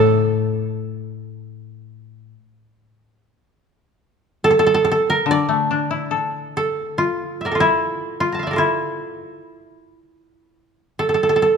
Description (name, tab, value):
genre	japanese traditional, Japanese chamber music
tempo	74 BPM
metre	4/4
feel	rubato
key	A miyako bushi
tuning	A4 = 439 Hz
part	koto	melody	0.0-11.6 s	E4 to Bb5	-17 LUFS	right 2 dB	none
part	koto	accompaniment	0.0-7.8 s	A2 to A4	-21 LUFS	left 6 dB	none
room	moderate recital hall reverb, RT60 1.9 s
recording	minimal, uncompressed stereo recording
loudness	-17 LUFS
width	side -6 dB against mid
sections	0.0-5.3 A section; 5.3-11.6 B section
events	none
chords	none